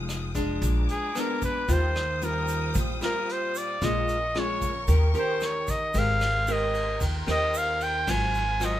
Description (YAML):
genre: bossa nova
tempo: 113 BPM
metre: 4/4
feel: straight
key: Eb major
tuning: A4 = 440 Hz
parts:
  - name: nylon-string guitar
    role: accompaniment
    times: 0.0-8.8 s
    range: Ab2 to Bb4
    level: -31 LUFS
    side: left 1 dB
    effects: none
  - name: warm studio string section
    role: sustained chords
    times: 0.0-8.8 s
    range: Ab3 to Eb6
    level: -38 LUFS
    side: left 1 dB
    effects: none
  - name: upright bass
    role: bass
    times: 0.0-8.8 s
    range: F1 to Eb2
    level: -27 LUFS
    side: equal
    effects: none
  - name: vintage brush drum kit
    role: drums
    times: 0.1-8.7 s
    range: hi-hat, kick drum, ride cymbal, rim click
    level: -34 LUFS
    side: equal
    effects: none
  - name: egg shaker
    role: percussion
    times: 0.1-8.8 s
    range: none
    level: -40 LUFS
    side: right 3 dB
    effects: none
  - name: breathy flugelhorn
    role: melody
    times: 0.9-8.8 s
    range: Ab4 to Ab5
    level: -27 LUFS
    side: equal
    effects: none
room: moderate studio reverb, RT60 1.0 s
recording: minimal, uncompressed stereo recording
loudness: -24 LUFS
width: side -12 dB against mid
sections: 0.0-5.9 A section; 5.9-8.8 A section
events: flugelhorn solo 0.0-8.8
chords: 0.0 Fm9; 0.6 Bb7b9; 1.7 Eb69; 3.8 Bbm7; 4.9 Eb7; 5.9 Abmaj9; 8.1 Ab13